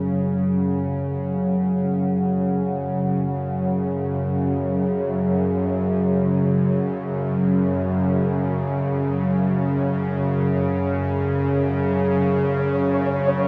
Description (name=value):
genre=dark ambient drone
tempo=free time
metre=none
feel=none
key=unclear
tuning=A4 = 440 Hz
part: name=deep dark ambient pad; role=sustained chords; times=0.0-13.5 s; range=F#3 to F#5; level=-26 LUFS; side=equal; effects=chorus, built-in reverb
part: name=bowed-like drone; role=drone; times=0.0-13.5 s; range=F#2 to C#3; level=-24 LUFS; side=equal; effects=built-in reverb
part: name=flickering grainy texture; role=texture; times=12.3-13.5 s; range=C#5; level=-28 LUFS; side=equal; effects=built-in reverb
room=wet huge ambient reverb, RT60 9.2 s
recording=none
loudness=-22 LUFS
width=mono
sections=0.0-13.5 A section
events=none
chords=0.0 F#5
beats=free time